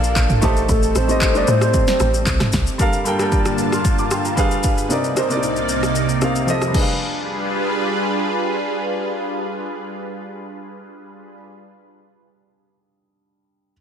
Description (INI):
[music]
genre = amapiano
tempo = 114 BPM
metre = 4/4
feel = straight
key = unclear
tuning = A4 = 440 Hz
[part]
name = soft octave-layered synth lead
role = melody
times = 0.0-2.2 s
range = A4 to F5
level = -22 LUFS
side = left 1 dB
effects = chorus, analog delay
[part]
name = warm grand piano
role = accompaniment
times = 0.0-13.7 s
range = C3 to F6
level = -22 LUFS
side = equal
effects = wide subtle chorus
[part]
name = lush unison pad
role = sustained chords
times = 0.0-11.4 s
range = C2 to A5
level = -23 LUFS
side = right 1 dB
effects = chorus, phaser, sidechain pumping
[part]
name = woody log drum bass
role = bass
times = 0.0-2.7 s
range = A1 to A2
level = -20 LUFS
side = equal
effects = none
[part]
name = deep house drum kit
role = drums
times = 0.0-6.9 s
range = crash cymbal, handclaps, kick drum, rim click, shaker, snare drum, toms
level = -20 LUFS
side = equal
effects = overdrive
[sound]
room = moderate lush hall reverb, RT60 2.2 s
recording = dreamy mix soaked in reverb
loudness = -16 LUFS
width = side -8 dB against mid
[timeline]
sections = 0.0-2.8 A section; 2.8-7.0 B section; 7.0-11.2 C section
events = none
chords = 0.4 Am7b5; 2.8 Gm7; 4.4 G7b9; 4.9 Cm9; 6.5 F7; 6.7 G7b9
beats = 0.17 | 0.69 1.22 1.74 2.27 | 2.80 3.32 3.85 4.38 | 4.90 5.43 5.95 6.48 | 7.01 7.53 8.06 8.59 | 9.11 9.64 10.16 10.69